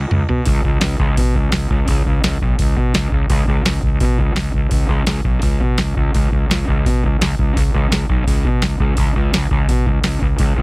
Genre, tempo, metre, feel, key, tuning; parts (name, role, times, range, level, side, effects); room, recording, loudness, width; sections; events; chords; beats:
heavy metal; 169 BPM; 4/4; straight; A4 = 440 Hz
fuzz fingered electric bass; bass; 0.0-10.6 s; B1 to B2; -18 LUFS; equal; overdrive
booming analog drum machine; drums; 0.1-10.6 s; hi-hat, kick drum, snare drum, toms; -16 LUFS; equal
little or no reverb; dense, heavily limited modern master; -14 LUFS; side -32 dB against mid
0.5-10.6 A section
drum fill 0.0-0.5
0.11 | 0.47 0.82 1.18 1.53 | 1.88 2.24 2.59 2.95 | 3.30 3.66 4.01 4.37 | 4.72 5.08 5.43 5.79 | 6.14 6.50 6.85 7.21 | 7.56 7.91 8.27 8.62 | 8.98 9.33 9.69 10.04 | 10.40